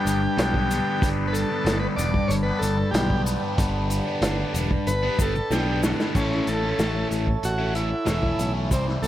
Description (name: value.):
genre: psychedelic rock.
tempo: 94 BPM.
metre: 4/4.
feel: straight.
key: A mixolydian.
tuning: A4 = 441 Hz.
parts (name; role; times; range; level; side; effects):
combo organ; melody; 0.0-9.1 s; C4 to D5; -28 LUFS; equal; analog delay.
pedal harmonium; sustained chords; 0.0-9.1 s; D4 to B5; -33 LUFS; right 4 dB; none.
cranked stack guitar; riff; 0.0-9.1 s; G2 to E4; -26 LUFS; left 1 dB; overdrive, phaser.
picked electric bass; bass; 0.1-9.1 s; E1 to C2; -26 LUFS; equal; none.
vintage drum kit; drums; 0.1-9.1 s; crash cymbal, hi-hat, kick drum, snare drum; -26 LUFS; equal; none.
egg shaker; percussion; 0.1-9.1 s; none; -39 LUFS; left 8 dB; none.
room: light reverb, small room ambience.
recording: none.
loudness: -21 LUFS.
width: side -13 dB against mid.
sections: 0.0-6.2 A section; 6.2-9.1 B section.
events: transistor combo organ solo 0.0-6.2; drum fill 5.5-6.2.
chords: 0.0 G; 6.2 A.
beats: 0.38 | 1.02 1.67 2.31 2.95 | 3.59 4.23 4.87 5.51 | 6.15 6.79 7.43 8.07 | 8.71.